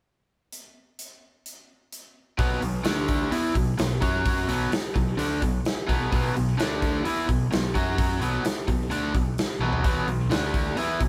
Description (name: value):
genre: classic rock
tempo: 129 BPM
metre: 4/4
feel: straight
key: B minor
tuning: A4 = 440 Hz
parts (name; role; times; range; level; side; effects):
- big rock drum kit; drums; 0.5-11.1 s; hi-hat, kick drum, snare drum, toms; -29 LUFS; equal; none
- biting overdriven guitar; riff; 2.4-11.1 s; B2 to F#4; -32 LUFS; equal; none
- overdriven electric guitar; riff; 2.4-11.1 s; B2 to F#4; -31 LUFS; equal; spring reverb
- growling fingered electric bass; bass; 2.4-11.1 s; B1 to F#2; -33 LUFS; equal; overdrive
room: moderate small room reverb, RT60 0.5 s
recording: band playing live in one room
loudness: -25 LUFS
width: mono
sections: 0.5-2.4 A section; 2.4-11.1 B section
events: drum fill 9.6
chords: 0.5 N.C.; 2.4 B5; 2.8 D5; 3.3 B5; 4.0 F#5; 4.5 Bm; 6.6 D5; 7.0 B5; 7.7 F#5; 8.2 Bm; 10.3 D5